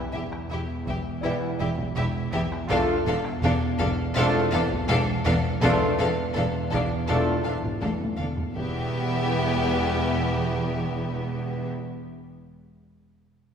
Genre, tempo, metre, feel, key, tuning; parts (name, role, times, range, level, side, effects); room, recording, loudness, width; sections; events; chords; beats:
cinematic, suspense film score; 82 BPM; 4/4; straight; E phrygian; A4 = 440 Hz
dark French horn section; sustained chords; 0.0-11.7 s; B3 to B4; -32 LUFS; left 4 dB
warm trombone section; sustained chords; 0.0-11.7 s; E3 to F4; -33 LUFS; right 3 dB
analog drone; drone; 0.0-11.7 s; E2; -33 LUFS; equal; chorus
celesta; texture; 0.0-8.6 s; C4 to D5; -35 LUFS; right 1 dB
warm chamber violin section; melody; 0.1-11.7 s; E5 to F5; -33 LUFS; left 2 dB
clear chamber violin section; second line; 0.1-11.7 s; G4 to A4; -34 LUFS; left 2 dB
rich chamber viola section; accompaniment; 0.1-11.7 s; B3 to E4; -33 LUFS; equal
rich studio double bass section; bass; 0.1-11.7 s; E1; -29 LUFS; right 2 dB
warm chamber cello section; bass; 0.1-11.7 s; E2; -30 LUFS; equal
taiko ensemble; drums; 0.3-8.7 s; -35 LUFS; left 1 dB
wet scoring stage reverb, RT60 2.0 s; heard from further back in the room; -23 LUFS; side -7 dB against mid
0.0-8.6 A section; 8.6-11.5 B section
drum fill 7.8-8.6
0.0 Em; 2.7 Dm/E; 8.6 Em
0.51 1.24 1.97 | 2.70 3.43 4.16 4.89 | 5.63 6.36 7.09 7.82 | 8.55 9.29 10.02 10.75